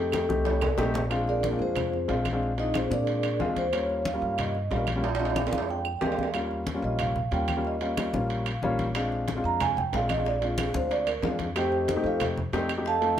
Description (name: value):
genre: Afro-Cuban jazz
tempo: 184 BPM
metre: 4/4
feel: straight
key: Bb mixolydian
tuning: A4 = 440 Hz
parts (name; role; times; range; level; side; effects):
- vibraphone with soft mallets; melody; 0.0-13.2 s; Bb3 to Bb5; -28 LUFS; right 2 dB; plate reverb
- dark upright piano; accompaniment; 0.0-13.2 s; G3 to F5; -30 LUFS; left 2 dB; none
- upright bass; bass; 0.0-13.2 s; Bb1 to Bb2; -32 LUFS; equal; none
- bongos; percussion; 0.1-1.1, 8.9-13.2 s; none; -40 LUFS; left 4 dB; none
- claves; percussion; 0.1-12.9 s; none; -39 LUFS; right 9 dB; none
- congas; percussion; 0.1-13.2 s; none; -35 LUFS; left 2 dB; none
- timbales; percussion; 0.1-13.2 s; none; -35 LUFS; right 5 dB; none
room: light reverb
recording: none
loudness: -25 LUFS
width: side -10 dB against mid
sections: 0.0-1.1 A section; 1.1-13.2 B section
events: drum fill 0.3-1.1, 5.0-6.3; vibraphone solo 1.1-13.2; upright piano fill 8.3-9.0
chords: 0.0 F9; 1.1 Bb9; 3.7 Eb9; 5.0 Bb9; 6.3 Eb9; 9.0 Bb9; 11.6 F9